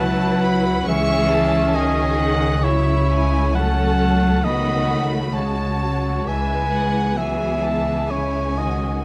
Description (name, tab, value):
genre	cinematic, emotional film score for orchestra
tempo	66 BPM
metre	3/4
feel	rubato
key	C# minor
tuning	A4 = 439 Hz
part	rich studio violin section	melody	0.0-9.0 s	E5 to C#6	-33 LUFS	equal	none
part	warm cor anglais	second line	0.0-9.0 s	C#5 to G#5	-26 LUFS	equal	none
part	warm studio violin section	second line	0.0-9.0 s	E4 to B4	-31 LUFS	equal	none
part	rich studio viola section	accompaniment	0.0-9.0 s	D#3 to E4	-29 LUFS	equal	none
part	concert harp	arpeggios	0.0-9.0 s	C#3 to C#5	-32 LUFS	equal	none
part	rich studio cello section	bass	0.0-9.0 s	C#3 to G#3	-26 LUFS	equal	none
part	rich studio double bass section	bass	0.0-9.0 s	C#2	-26 LUFS	equal	none
room	light reverb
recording	close, detailed microphones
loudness	-20 LUFS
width	mono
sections	0.0-9.0 A section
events	none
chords	0.0 Bsus4/C#; 0.9 C#madd9; 3.6 F#m/C#; 6.3 Emaj7/C#